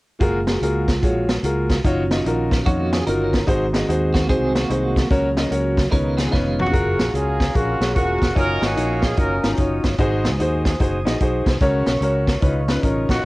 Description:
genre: uptempo gospel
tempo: 147 BPM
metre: 4/4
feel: swing 64% on 8ths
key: F# major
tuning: A4 = 439 Hz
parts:
  - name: clear grand piano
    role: accompaniment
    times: 0.2-13.1 s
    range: G#2 to D#5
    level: -22 LUFS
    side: left 1 dB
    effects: cassette tape, plate reverb
  - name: mellow tonewheel organ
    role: sustained chords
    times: 0.2-13.2 s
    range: C#3 to D#6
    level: -28 LUFS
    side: right 2 dB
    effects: slow rotary speaker, cassette tape
  - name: fingered electric bass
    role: bass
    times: 0.2-13.2 s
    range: E1 to E#2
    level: -24 LUFS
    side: equal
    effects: none
  - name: swinging big-band drum kit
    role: drums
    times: 0.2-13.2 s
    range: hi-hat, kick drum, snare drum, toms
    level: -21 LUFS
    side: equal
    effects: cassette tape
  - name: clean electric guitar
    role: second line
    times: 2.7-6.7 s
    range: G#3 to A#4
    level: -27 LUFS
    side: right 3 dB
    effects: tremolo, cassette tape, plate reverb
  - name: warm horn section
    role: melody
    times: 6.6-9.9, 13.1-13.2 s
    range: A#3 to A#4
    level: -23 LUFS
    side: equal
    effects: cassette tape
room: moderate booth ambience, RT60 0.2 s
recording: home recording on cassette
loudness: -17 LUFS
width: side -20 dB against mid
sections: 0.2-6.7 A section; 6.7-13.2 B section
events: drum fill 6.3-6.7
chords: 0.2 F#maj9; 1.8 D#m9/F#; 3.5 G#7; 5.1 F#/C#; 5.9 C#9; 6.7 F#maj9; 8.4 D#m9/F#; 10.0 G#7; 11.6 F#; 12.4 C#9

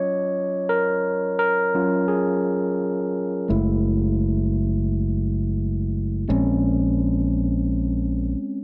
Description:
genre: R&B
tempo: 86 BPM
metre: 4/4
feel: swing 60% on 16ths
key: Eb minor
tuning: A4 = 440 Hz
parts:
  - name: overdriven tine electric piano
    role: accompaniment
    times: 0.0-8.6 s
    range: Gb3 to Db5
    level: -24 LUFS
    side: equal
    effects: none
  - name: modern bright fingered electric bass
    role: bass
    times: 3.5-8.3 s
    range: Gb1 to Bb1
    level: -25 LUFS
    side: equal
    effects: none
room: light reverb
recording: none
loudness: -23 LUFS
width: mono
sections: 0.0-8.6 A section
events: tine electric piano solo 0.0-8.6; stop 8.4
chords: 0.0 Ebm9; 3.5 Gbm9; 6.3 Bbm9

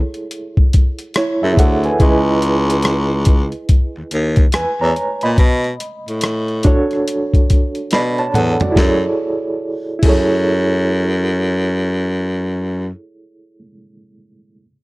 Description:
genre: R&B, neo-soul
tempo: 71 BPM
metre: 4/4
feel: swing 63% on 16ths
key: F# minor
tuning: A4 = 440 Hz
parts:
  - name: reed electric piano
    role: accompaniment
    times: 0.0-14.7 s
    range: D4 to B5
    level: -19 LUFS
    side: right 2 dB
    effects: fast tremolo
  - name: boom bap sampler-style drum kit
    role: drums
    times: 0.1-10.3 s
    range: crash cymbal, hi-hat, kick drum, rim click, snare drum, toms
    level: -14 LUFS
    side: equal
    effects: none
  - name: breathy baritone saxophone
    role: bass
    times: 1.4-12.9 s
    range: C#2 to B2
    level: -17 LUFS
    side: equal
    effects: none
room: little or no reverb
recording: dry, close 1970s-style studio recording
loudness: -14 LUFS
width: side -21 dB against mid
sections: 0.0-8.8 A section; 8.8-12.1 B section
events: drum fill 7.9-8.8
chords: 0.0 F#m9; 2.0 C#m9; 5.4 Bm9; 8.8 F#m9

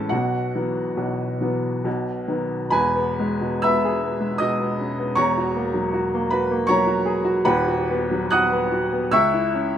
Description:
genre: classical, romantic character piece for solo piano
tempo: 65-82 BPM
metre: 3/4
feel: rubato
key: E major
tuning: A4 = 440 Hz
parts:
  - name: clear upright piano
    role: solo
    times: 0.0-9.8 s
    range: D#1 to F#6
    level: -19 LUFS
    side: equal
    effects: none
room: light reverb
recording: dark, warm production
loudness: -19 LUFS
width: side -9 dB against mid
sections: 0.0-2.7 A section; 2.7-9.8 B section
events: none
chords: 0.1 Bsus4; 1.9 B; 2.7 E; 5.2 F#7/E; 7.4 B/D#; 9.1 C#m

